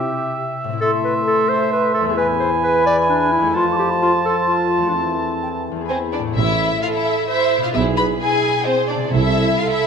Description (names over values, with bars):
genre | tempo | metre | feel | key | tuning
cinematic, playful, whimsical film cue | 130 BPM | 3/4 | straight | A minor | A4 = 440 Hz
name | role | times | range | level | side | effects
hollow wooden flute | second line | 0.0-6.2 s | G5 to D6 | -22 LUFS | left 1 dB | none
warm clarinet | second line | 0.0-5.9 s | C4 to D5 | -20 LUFS | equal | none
warm cor anglais | second line | 0.0-6.0 s | E5 to A5 | -23 LUFS | right 4 dB | none
concert harp | arpeggios | 0.0-9.9 s | E2 to E5 | -26 LUFS | left 6 dB | none
mellow French horn section | sustained chords | 0.8-6.1 s | E3 to A3 | -24 LUFS | left 4 dB | none
warm symphonic violin section | melody | 5.9-9.9 s | C5 to B5 | -21 LUFS | left 3 dB | none
rich chamber violin section | second line | 5.9-9.9 s | C4 to B4 | -24 LUFS | left 1 dB | none
dark chamber double bass section | bass | 6.4-9.5 s | A1 to C2 | -24 LUFS | right 5 dB | none
mellow tuba | bass | 6.4-9.5 s | A1 to C2 | -25 LUFS | right 4 dB | none
warm chamber cello section | bass | 6.4-9.5 s | A2 to C3 | -25 LUFS | right 5 dB | none
warm chamber viola section | accompaniment | 6.8-9.9 s | E4 to C5 | -22 LUFS | right 8 dB | none
room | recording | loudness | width
wet scoring stage reverb, RT60 1.5 s | none | -16 LUFS | side -6 dB against mid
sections
0.0-6.4 A section; 6.4-9.9 B section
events
none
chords
0.0 C; 0.8 Am; 2.2 E; 3.6 F; 4.9 Am/E; 5.9 E; 6.4 Am; 7.7 E7/B; 9.1 Am/C